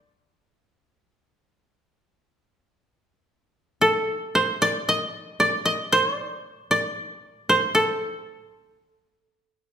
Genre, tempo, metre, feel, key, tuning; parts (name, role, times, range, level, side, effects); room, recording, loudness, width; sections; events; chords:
japanese traditional, Japanese chamber music; 50-59 BPM; 4/4; rubato; A4 = 440 Hz
koto; solo; 0.0-9.7 s; A4 to Eb5; -20 LUFS; equal
wet recital hall reverb, RT60 1.3 s; recorded in a church or concert hall; -20 LUFS; side -8 dB against mid
0.0-3.8 A section; 3.8-9.7 B section